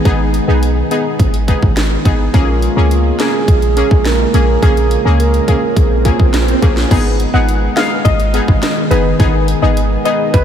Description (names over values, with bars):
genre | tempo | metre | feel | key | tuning
dancehall | 105 BPM | 4/4 | straight | G# dorian | A4 = 441 Hz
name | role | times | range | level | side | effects
synth brass stab | accompaniment | 0.0-10.3 s | A#3 to G#4 | -18 LUFS | left 2 dB | chorus
deep dark ambient pad | sustained chords | 0.0-10.4 s | C#3 to G#4 | -20 LUFS | right 1 dB | chorus, built-in reverb
clean 808-style bass | bass | 0.1-10.4 s | F#1 to C#2 | -14 LUFS | equal | none
island pop drum kit | drums | 0.1-10.4 s | crash cymbal, hi-hat, kick drum, rim click, snare drum | -16 LUFS | equal | none
breathy flute-like synth lead | second line | 2.3-6.6 s | E#4 to A#4 | -19 LUFS | right 5 dB | chorus, analog delay
swell | sound effects | 5.7-6.9 s | none | -24 LUFS | right 4 dB | none
steel pan | melody | 7.3-10.4 s | B4 to F#5 | -18 LUFS | left 4 dB | analog delay
room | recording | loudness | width
light reverb | none | -10 LUFS | side -9 dB against mid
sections
0.0-6.9 A section; 6.9-10.4 B section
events
swell 5.7-6.9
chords
0.0 G#m; 2.3 A#m7; 6.9 G#m